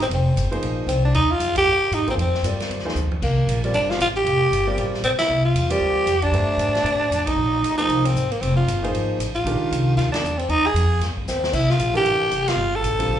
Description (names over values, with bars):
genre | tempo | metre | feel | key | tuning
modal jazz | 231 BPM | 4/4 | swing 60% on 8ths | Bb mixolydian | A4 = 438 Hz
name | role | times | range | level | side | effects
growling tenor saxophone | melody | 0.0-13.2 s | Bb3 to A4 | -20 LUFS | equal | plate reverb, slapback echo
upright bass | bass | 0.0-13.2 s | F1 to A2 | -23 LUFS | equal | none
swinging big-band drum kit | drums | 0.0-13.0 s | crash cymbal, hi-hat, kick drum, ride cymbal, snare drum, toms | -30 LUFS | right 1 dB | none
warm grand piano | accompaniment | 0.5-13.2 s | D3 to E5 | -28 LUFS | equal | plate reverb, slapback echo
room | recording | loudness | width
moderate club reverb, RT60 0.5 s | live gig heard through the venue's PA, club reverb, nothing above 10.7 kHz | -18 LUFS | side -10 dB against mid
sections
0.0-13.2 A section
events
band accent 1.5, 5.2, 7.2, 10.1, 12.4; drum fill 3.0, 11.3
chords
0.0 Bb13sus4; 3.2 C13sus4; 7.4 Bb13sus4; 11.5 C13sus4